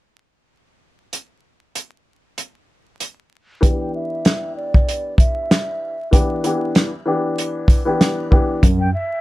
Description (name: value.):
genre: hip hop, boom-bap hip-hop.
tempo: 96 BPM.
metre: 4/4.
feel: swing 55% on 16ths.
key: E minor.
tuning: A4 = 440 Hz.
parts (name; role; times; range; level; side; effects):
warm soul drum kit; drums; 1.1-8.8 s; hi-hat, kick drum, snare drum; -15 LUFS; equal; none.
dark upright piano; accompaniment; 3.6-8.6 s; E3 to G4; -22 LUFS; left 2 dB; cassette tape, high-pass filter, low-pass filter.
breathy mellow silver concert flute; melody; 3.8-9.2 s; D5 to G5; -26 LUFS; right 1 dB; high-pass filter, low-pass filter, ping-pong delay.
tine electric piano; bass; 8.6-8.9 s; F#2; -18 LUFS; equal; overdrive, fast stereo tremolo.
room: little or no reverb.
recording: vinyl crackle.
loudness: -16 LUFS.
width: side -18 dB against mid.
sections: 1.1-3.6 A section; 3.6-9.2 B section.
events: filter sweep 3.6-9.2.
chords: 1.1 N.C.; 3.6 Em7; 8.6 Dadd9 (rootless).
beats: | 1.13 1.75 2.38 3.00 | 3.63 4.25 4.88 5.50 | 6.13 6.75 7.38 8.00 | 8.63.